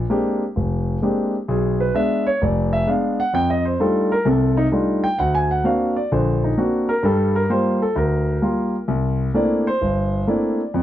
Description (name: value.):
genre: solo jazz.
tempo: 130 BPM.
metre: 4/4.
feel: swing 67% on 8ths.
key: unclear.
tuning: A4 = 441 Hz.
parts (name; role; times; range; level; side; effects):
warm concert grand piano; solo; 0.0-10.8 s; F1 to Ab5; -17 LUFS; equal; none.
room: light reverb.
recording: dry, close 1970s-style studio recording.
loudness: -17 LUFS.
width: side -12 dB against mid.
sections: 0.0-10.8 A section.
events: grand piano solo 0.0-10.8.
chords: 0.0 Bb13; 1.5 Bdim7; 3.3 F13; 5.2 Daug7; 7.0 Gm7; 8.9 C13.